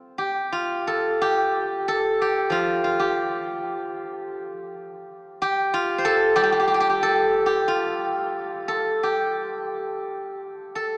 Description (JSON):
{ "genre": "chinese traditional, Chinese solo plucked strings", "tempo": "91 BPM", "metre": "4/4", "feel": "uneven beats, rubato", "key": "unclear", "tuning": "A4 = 440 Hz", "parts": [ { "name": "steel-string zither", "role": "solo", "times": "0.0-11.0 s", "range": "F3 to C5", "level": "-24 LUFS", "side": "equal", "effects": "none" } ], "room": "wet cathedral reverb, RT60 7.2 s", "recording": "recorded in a church or concert hall, small speaker sound", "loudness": "-23 LUFS", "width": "mono", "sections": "0.0-11.0 A section", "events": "none", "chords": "none" }